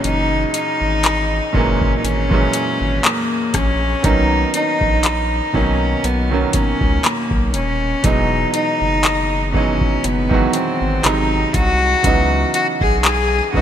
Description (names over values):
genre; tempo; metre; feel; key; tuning
contemporary R&B; 60 BPM; 4/4; swing 54% on 16ths; B major; A4 = 440 Hz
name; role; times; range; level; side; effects
rich cello; melody; 0.0-13.6 s; A#3 to G#4; -19 LUFS; left 1 dB; digital delay
clear baby grand piano; accompaniment; 0.0-13.6 s; A#2 to F#4; -21 LUFS; right 4 dB; none
saturated sub bass; bass; 0.0-13.6 s; D#1 to C#2; -21 LUFS; equal; none
booming analog drum machine; drums; 0.0-13.6 s; handclaps, hi-hat, kick drum, rim click; -19 LUFS; equal; none
room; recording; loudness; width
moderate lush hall reverb, RT60 3.0 s; bright 1980s-style digital production; -15 LUFS; side -10 dB against mid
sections
0.0-13.6 A section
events
none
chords
0.0 F#9; 4.0 Bmaj9; 8.0 Emaj9; 11.0 G#7; 12.0 C#m11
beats
| 0.04 1.04 2.04 3.04 | 4.04 5.04 6.04 7.04 | 8.04 9.04 10.04 11.04 | 12.04 13.04